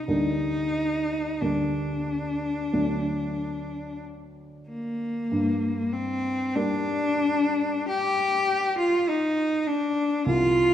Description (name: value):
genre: classical, romantic duo for cello and grand piano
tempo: 43-51 BPM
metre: 4/4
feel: rubato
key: G minor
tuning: A4 = 440 Hz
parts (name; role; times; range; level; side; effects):
- rich cello; melody; 0.0-10.7 s; Bb3 to G4; -24 LUFS; left 1 dB; none
- dark baby grand piano; accompaniment; 0.0-10.7 s; C2 to D4; -29 LUFS; right 1 dB; none
room: moderate recital hall reverb, RT60 1.7 s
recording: none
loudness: -23 LUFS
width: side -10 dB against mid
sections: 0.0-5.3 A section; 5.3-10.7 B section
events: none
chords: 0.1 Gm/D; 2.7 D; 5.3 Gm